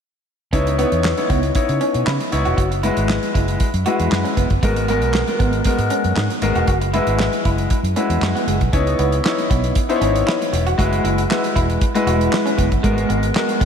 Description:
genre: early-eighties boogie funk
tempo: 117 BPM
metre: 4/4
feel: straight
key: C# dorian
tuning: A4 = 440 Hz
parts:
  - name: clear concert grand piano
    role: accompaniment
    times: 0.5-13.7 s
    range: G#3 to C#5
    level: -19 LUFS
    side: left 2 dB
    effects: lush chorus
  - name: electric guitar through a small old amp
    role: riff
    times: 0.5-13.7 s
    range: G#3 to F#4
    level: -25 LUFS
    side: right 3 dB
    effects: wide subtle chorus
  - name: vintage muted fingered electric bass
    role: bass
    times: 0.5-13.7 s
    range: E1 to C#3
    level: -21 LUFS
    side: equal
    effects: none
  - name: damped 70s drum kit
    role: drums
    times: 0.5-13.7 s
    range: handclaps, hi-hat, kick drum, snare drum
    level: -22 LUFS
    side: right 1 dB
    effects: none
room: moderate lush hall reverb, RT60 2.2 s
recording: dreamy mix soaked in reverb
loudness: -16 LUFS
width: side -7 dB against mid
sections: 0.5-8.7 A section; 8.7-13.7 B section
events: none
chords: 0.5 C#m9; 2.6 F#9sus4; 4.6 G#m9; 6.7 F#9sus4; 8.7 C#m9; 10.8 F#9sus4; 12.8 G#m9

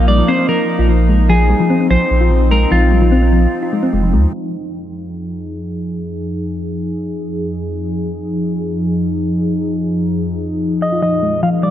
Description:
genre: IDM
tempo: 148 BPM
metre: 4/4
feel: straight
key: F minor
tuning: A4 = 440 Hz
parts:
  - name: clean electric guitar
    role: melody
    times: 0.0-3.9, 10.8-11.7 s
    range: F4 to F5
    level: -18 LUFS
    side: equal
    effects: digital delay
  - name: warbly tape-like pad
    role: sustained chords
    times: 0.0-11.7 s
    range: F2 to Bb4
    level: -18 LUFS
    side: left 1 dB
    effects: chorus, built-in reverb
  - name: warm sub bass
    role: bass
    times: 0.0-4.3 s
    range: F1 to Eb2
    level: -13 LUFS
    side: equal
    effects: none
  - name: thumb-piano-like synth pluck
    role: arpeggios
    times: 0.1-4.2, 10.9-11.7 s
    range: F3 to F4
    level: -18 LUFS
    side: left 2 dB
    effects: chorus, vintage 12-bit sampler grit, tape echo
room: moderate lush hall reverb, RT60 2.2 s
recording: dark, warm production, low-pass filter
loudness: -13 LUFS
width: side -11 dB against mid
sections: 0.0-4.3 A section; 4.3-11.7 B section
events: filter sweep on ambient pad 4.3-11.7; filter sweep 4.3-11.7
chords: 0.0 F7(no3); 4.3 Fm7; 10.8 Bbsus4

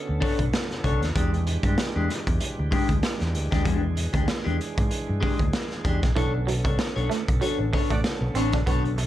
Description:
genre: funk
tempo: 96 BPM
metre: 4/4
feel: swing 56% on 16ths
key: unclear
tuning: A4 = 440 Hz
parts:
  - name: bright tonewheel organ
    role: sustained chords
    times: 0.0-9.1 s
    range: D3 to A4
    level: -34 LUFS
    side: right 2 dB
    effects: slow rotary speaker, overdrive
  - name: clean electric guitar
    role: accompaniment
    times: 0.1-9.0 s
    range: G#3 to C#5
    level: -29 LUFS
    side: left 4 dB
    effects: phaser
  - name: fingered electric bass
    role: bass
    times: 0.1-9.1 s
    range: A1 to G#2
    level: -26 LUFS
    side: equal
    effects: none
  - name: raw garage drum kit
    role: drums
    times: 0.2-9.1 s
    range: hi-hat, kick drum, snare drum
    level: -26 LUFS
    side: equal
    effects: none
  - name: electric guitar through a small old amp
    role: riff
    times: 6.2-9.0 s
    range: E3 to D4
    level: -30 LUFS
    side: right 8 dB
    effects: lush chorus
  - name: warm horn section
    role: second line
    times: 7.9-8.0 s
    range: A3 to D5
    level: -33 LUFS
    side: right 2 dB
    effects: plate reverb
room: little or no reverb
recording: dark, warm production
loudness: -22 LUFS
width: side -13 dB against mid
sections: 0.0-9.1 A section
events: none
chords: 0.0 Bm9; 1.2 E7#9; 6.2 Bm9

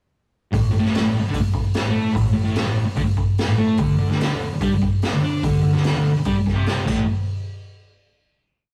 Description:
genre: garage rock duo or trio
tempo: 146 BPM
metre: 4/4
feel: straight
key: unclear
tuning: A4 = 440 Hz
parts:
  - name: fuzz guitar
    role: riff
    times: 0.5-7.0 s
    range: A2 to D4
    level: -23 LUFS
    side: equal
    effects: distortion
  - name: growling picked electric bass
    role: bass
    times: 0.5-7.1 s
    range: A1 to D3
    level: -31 LUFS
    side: equal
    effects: overdrive
  - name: raw garage drum kit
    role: drums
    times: 0.5-7.0 s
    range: crash cymbal, hi-hat, kick drum, snare drum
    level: -24 LUFS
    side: equal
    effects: none
room: moderate stone room reverb, RT60 0.9 s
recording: rough rehearsal-room recording, warm saturation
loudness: -20 LUFS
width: mono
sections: 0.5-7.1 verse; 7.1-8.7 final hit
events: none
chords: 0.5 N.C.; 3.8 Csus2; 6.9 A5; 7.1 N.C.

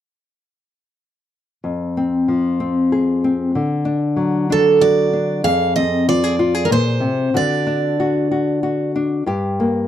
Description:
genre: acoustic folk duo or small band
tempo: 94 BPM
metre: 3/4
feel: straight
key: F dorian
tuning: A4 = 440 Hz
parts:
  - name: nylon-string guitar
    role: accompaniment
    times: 1.6-9.9 s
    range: F2 to Ab4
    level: -17 LUFS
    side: left 2 dB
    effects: none
  - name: picked steel-string acoustic guitar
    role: melody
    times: 4.5-8.9 s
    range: A4 to F5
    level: -17 LUFS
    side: right 4 dB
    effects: none
room: little or no reverb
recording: dry, close 1970s-style studio recording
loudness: -15 LUFS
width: side -11 dB against mid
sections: 1.6-5.5 A section; 5.5-9.9 B section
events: none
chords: 1.6 Fm; 3.5 D; 5.5 Fm; 7.4 D; 9.3 Gm

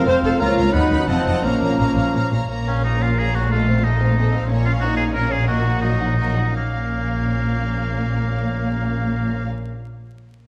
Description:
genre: classical, dramatic, fast romantic movement for symphony orchestra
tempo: 158-187 BPM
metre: 3/4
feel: rubato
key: Bb minor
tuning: A4 = 439 Hz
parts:
  - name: warm symphonic violin section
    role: melody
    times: 0.0-9.5 s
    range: Db5 to B5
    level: -34 LUFS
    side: equal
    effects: none
  - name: bright oboe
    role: second line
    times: 0.0-9.5 s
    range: Bb3 to F#5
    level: -28 LUFS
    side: equal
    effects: none
  - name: dark clarinet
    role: second line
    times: 0.0-2.3 s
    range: C5 to Eb5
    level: -31 LUFS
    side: equal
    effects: none
  - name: mellow hollow small flute group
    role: second line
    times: 0.0-2.3 s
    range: F5 to B5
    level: -32 LUFS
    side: equal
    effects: none
  - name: rich symphonic violin section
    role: second line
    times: 0.0-9.5 s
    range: A3 to F#5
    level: -33 LUFS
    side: equal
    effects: none
  - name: clear symphonic viola section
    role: accompaniment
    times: 0.0-9.5 s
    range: Gb3 to C5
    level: -28 LUFS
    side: equal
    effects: none
  - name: mellow bassoon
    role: accompaniment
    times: 0.0-2.3 s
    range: F3 to C4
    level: -29 LUFS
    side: equal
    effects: none
  - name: mellow French horn section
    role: sustained chords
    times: 0.0-2.3 s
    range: F3 to Eb4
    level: -27 LUFS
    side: equal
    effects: none
  - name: warm symphonic cello section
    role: bass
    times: 0.1-9.5 s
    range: Db2 to Bb2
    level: -28 LUFS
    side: equal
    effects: none
  - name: warm symphonic double bass section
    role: bass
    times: 0.1-9.5 s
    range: F1 to D#2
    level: -24 LUFS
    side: equal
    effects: none
room: moderate scoring stage reverb, RT60 1.7 s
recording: vinyl crackle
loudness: -20 LUFS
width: mono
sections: 0.0-2.5 A section; 2.5-6.5 B section; 6.5-8.7 C section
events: slowing down 4.0-6.5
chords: 0.4 Bbm; 0.7 B; 1.1 F7b9; 1.4 Bbm; 3.5 F7/Bb; 4.5 Bbm; 5.5 Ebm/Bb; 6.5 Bbm

